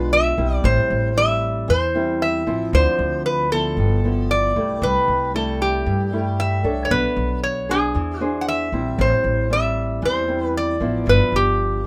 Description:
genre	bossa nova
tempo	115 BPM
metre	4/4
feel	straight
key	unclear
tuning	A4 = 440 Hz
part	metal-body resonator slide guitar	melody	0.0-11.8 s	G4 to F#5	-23 LUFS	equal	none
part	nylon-string guitar	accompaniment	0.0-11.9 s	G2 to C#5	-27 LUFS	equal	none
part	upright bass	bass	0.0-11.9 s	G1 to G2	-25 LUFS	equal	none
room	light reverb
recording	none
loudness	-20 LUFS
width	mono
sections	0.0-11.9 A section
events	none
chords	0.0 E7b9; 0.6 Am7; 2.7 Dm9; 3.8 G13; 4.8 C6; 6.9 Bm9; 7.9 E7b13; 9.0 Am7; 11.1 G6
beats	0.12 | 0.64 1.16 1.68 2.21 | 2.73 3.25 3.77 4.29 | 4.82 5.34 5.86 6.38 | 6.90 7.42 7.95 8.47 | 8.99 9.51 10.03 10.55 | 11.07 11.59

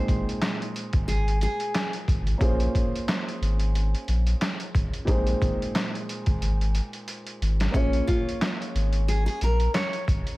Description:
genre	hip hop, boom-bap hip-hop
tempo	90 BPM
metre	4/4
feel	swing 57% on 16ths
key	Bb minor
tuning	A4 = 440 Hz
part	nylon-string guitar	melody	0.0-1.9, 7.8-10.0 s	Db4 to Db5	-30 LUFS	equal	ping-pong delay
part	dark upright piano	accompaniment	0.0-10.4 s	Bb2 to Db5	-32 LUFS	right 1 dB	cassette tape
part	warm sub bass	bass	0.1-10.2 s	Ab1 to Bb1	-24 LUFS	equal	none
part	trip hop sampler-style drum kit	drums	0.1-10.4 s	handclaps, hi-hat, kick drum, snare drum	-27 LUFS	equal	none
room	digital ambience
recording	vinyl crackle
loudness	-23 LUFS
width	side -19 dB against mid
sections	0.0-10.4 A section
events	drum fill 7.1-7.7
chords	0.0 Ab; 2.4 Bbm7; 5.1 Ab; 7.7 Bbm7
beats	0.41 1.07 1.74 | 2.41 3.08 3.74 4.41 | 5.08 5.74 6.41 7.08 | 7.74 8.41 9.07 9.74

